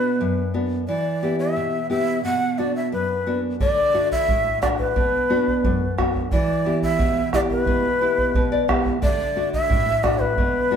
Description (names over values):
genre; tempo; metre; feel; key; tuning
andean folk, Andean ensemble; 89 BPM; 2/4; straight; unclear; A4 = 439 Hz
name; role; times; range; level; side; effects
breathy bright large quena; melody; 0.0-10.8 s; B4 to F#5; -22 LUFS; left 1 dB; none
nylon-string guitar; accompaniment; 0.0-10.8 s; F#2 to E5; -23 LUFS; equal; none
bombo; percussion; 3.6-10.5 s; none; -24 LUFS; right 1 dB; none
room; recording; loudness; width
moderate stone room reverb, RT60 0.9 s; band playing live in one room; -19 LUFS; side -8 dB against mid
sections
0.0-3.6 A section; 3.6-10.8 A section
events
nylon-string guitar fill 8.0-9.0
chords
0.0 Bm; 0.9 Em; 2.2 Bm; 3.6 D; 5.0 Bm; 6.3 Em; 9.0 D